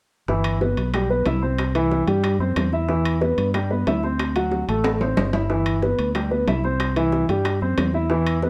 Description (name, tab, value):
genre	Afro-Cuban jazz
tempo	184 BPM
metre	4/4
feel	straight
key	G major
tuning	A4 = 439 Hz
part	warm baby grand piano	accompaniment	0.3-8.5 s	E3 to E5	-24 LUFS	equal	none
part	fingered electric bass	bass	0.3-8.5 s	G1 to G2	-26 LUFS	equal	none
part	bongos	percussion	0.3-8.5 s	none	-32 LUFS	equal	none
part	claves	percussion	0.4-8.4 s	none	-38 LUFS	equal	none
part	timbales	percussion	0.4-8.5 s	none	-31 LUFS	equal	none
room	moderate studio reverb, RT60 0.9 s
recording	dark, warm production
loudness	-22 LUFS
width	mono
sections	0.3-8.5 A section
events	drum fill 4.8-5.5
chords	0.3 G6; 1.6 C; 2.9 Em7; 4.2 D7; 5.5 G6; 6.8 C